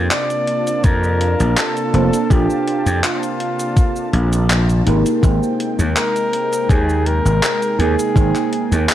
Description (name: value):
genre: vaporwave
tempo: 82 BPM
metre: 4/4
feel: straight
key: Bb major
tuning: A4 = 444 Hz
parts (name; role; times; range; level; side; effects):
- mellow FM electric piano; accompaniment; 0.0-8.9 s; Bb3 to G5; -22 LUFS; right 3 dB; phaser, lush chorus, tape echo
- lush unison pad; sustained chords; 0.0-8.9 s; C3 to A5; -25 LUFS; equal; chorus
- gritty slap bass; bass; 0.0-8.9 s; F1 to F2; -16 LUFS; equal; overdrive
- warm flugelhorn; melody; 0.1-8.9 s; F4 to D5; -22 LUFS; left 1 dB; tape echo
- gated 80s digital drum machine; drums; 0.1-8.9 s; cabasa, handclaps, hi-hat; -22 LUFS; equal; gated reverb, overdrive, small room reverb
- electronic kick drum; drums; 0.8-8.3 s; none; -14 LUFS; equal; overdrive, small room reverb
room: light reverb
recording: cassette tape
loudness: -14 LUFS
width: side -12 dB against mid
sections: 0.0-8.9 A section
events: none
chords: 0.0 Bbmaj9; 4.9 Abmaj9